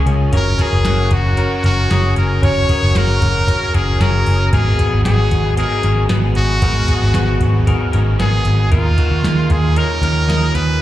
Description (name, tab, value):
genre	jangly indie pop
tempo	115 BPM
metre	4/4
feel	straight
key	unclear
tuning	A4 = 441 Hz
part	brilliant trumpet	melody	0.0-10.8 s	F4 to Db5	-20 LUFS	left 1 dB	slapback echo
part	crunchy overdriven guitar	accompaniment	0.0-10.8 s	Ab2 to Bb4	-26 LUFS	right 4 dB	slapback echo
part	reed electric piano	accompaniment	0.0-10.8 s	Cb4 to Db5	-24 LUFS	left 1 dB	overdrive, slapback echo
part	twelve-string electric guitar	arpeggios	0.0-10.8 s	Bb3 to Bb4	-27 LUFS	left 6 dB	ensemble chorus, slapback echo, ping-pong delay
part	vintage muted picked electric bass	bass	0.0-10.8 s	Gb1 to Eb2	-15 LUFS	equal	none
part	soft vintage rhythm box	drums	0.1-10.7 s	hi-hat, kick drum, snare drum	-19 LUFS	equal	none
room	digital ambience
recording	live gig heard through the venue's PA, club reverb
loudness	-13 LUFS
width	side -14 dB against mid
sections	0.0-10.8 A section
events	none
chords	0.3 Gb; 4.5 Abm7; 8.7 Ebsus2